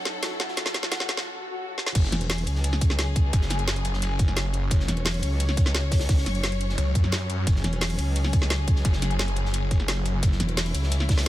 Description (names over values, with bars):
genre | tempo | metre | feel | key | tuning
dark technical drum and bass | 174 BPM | 4/4 | straight | F# minor | A4 = 441 Hz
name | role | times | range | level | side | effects
dark symphonic string section | sustained chords | 0.0-11.3 s | F#3 to C#5 | -33 LUFS | left 3 dB | sidechain pumping
riser and swell | sound effects | 0.0-2.0 s | none | -37 LUFS | equal | none
crunchy breakbeat drum kit | drums | 0.1-11.3 s | hi-hat, ride cymbal, snare drum | -38 LUFS | equal | none
drum and bass drum kit | drums | 0.1-11.2 s | crash cymbal, hi-hat, snare drum | -29 LUFS | equal | none
felt-muted upright piano | arpeggios | 0.2-1.0 s | F#4 to F#5 | -36 LUFS | right 2 dB | sidechain pumping, tape echo
snarling distorted saw bass | bass | 2.0-10.4 s | F#1 to F#2 | -26 LUFS | equal | distortion, overdrive, sidechain pumping
electronic kick drum | drums | 2.0-11.2 s | none | -22 LUFS | equal | none
metallic wobble bass | bass | 2.1-11.3 s | E1 to C#2 | -25 LUFS | equal | chorus
room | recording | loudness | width
small room reverb | high-pass filter | -22 LUFS | side -14 dB against mid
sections
0.0-2.0 A section; 2.0-11.3 B section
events
build-up 0.0-2.0; drum fill 0.0-1.3, 1.8; riser 0.0-1.3; break 1.3-2.0; swell 1.3-2.0; drop 2.0-11.3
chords
0.0 F#m; 2.0 F#5